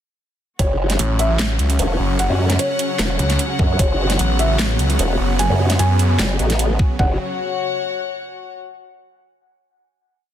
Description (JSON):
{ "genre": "heavy wobble dubstep", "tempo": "150 BPM", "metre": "4/4", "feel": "half-time", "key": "F# minor", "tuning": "A4 = 440 Hz", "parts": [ { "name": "felt-muted upright piano", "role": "melody", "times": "0.6-7.1 s", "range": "C#5 to G#5", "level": "-26 LUFS", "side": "equal", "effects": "dub echo" }, { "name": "supersaw pad", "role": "sustained chords", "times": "0.6-7.2 s", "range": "C#3 to C#5", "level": "-25 LUFS", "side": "right 1 dB", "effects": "sidechain pumping" }, { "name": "formant-sweep wobble bass", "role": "bass", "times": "0.6-7.2 s", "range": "E1 to F#2", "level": "-19 LUFS", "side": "equal", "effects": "chorus, overdrive" }, { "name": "dubstep drum kit", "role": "drums", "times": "0.6-6.7 s", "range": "handclaps, hi-hat, snare drum", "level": "-23 LUFS", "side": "right 1 dB", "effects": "studio reverb" }, { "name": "electronic kick drum", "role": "drums", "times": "0.6-0.7, 3.6-3.9, 6.8-7.1 s", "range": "none", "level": "-18 LUFS", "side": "equal", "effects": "studio reverb" }, { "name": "warm studio string section", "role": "texture", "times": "0.6-8.6 s", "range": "F#4 to F#5", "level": "-26 LUFS", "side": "left 6 dB", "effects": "sidechain pumping" }, { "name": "snarling distorted saw bass", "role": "bass", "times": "1.0-6.2 s", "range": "F#1 to F#2", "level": "-18 LUFS", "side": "equal", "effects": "distortion, overdrive" } ], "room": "digital ambience", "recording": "dense, heavily limited modern master", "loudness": "-16 LUFS", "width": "side -10 dB against mid", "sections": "0.6-7.0 drop; 7.0-8.6 final chord", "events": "drop 0.6-7.0", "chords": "0.6 F#5" }